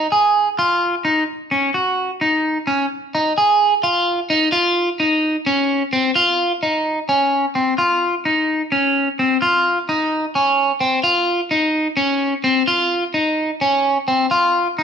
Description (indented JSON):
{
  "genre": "progressive instrumental, progressive",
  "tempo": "258 BPM (eighths)",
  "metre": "7/8",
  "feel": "straight",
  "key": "unclear",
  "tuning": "A4 = 440 Hz",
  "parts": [
    { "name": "electric guitar at the edge of break-up", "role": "solo", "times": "0.0-14.8 s", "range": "C4 to Ab4", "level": "-15 LUFS", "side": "equal", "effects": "phaser" }
  ],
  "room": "moderate large studio reverb, RT60 1.2 s",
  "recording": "band playing live in one room",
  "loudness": "-15 LUFS",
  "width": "side -7 dB against mid",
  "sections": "0.0-4.5 A section; 4.5-14.8 B section",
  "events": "none",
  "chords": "none"
}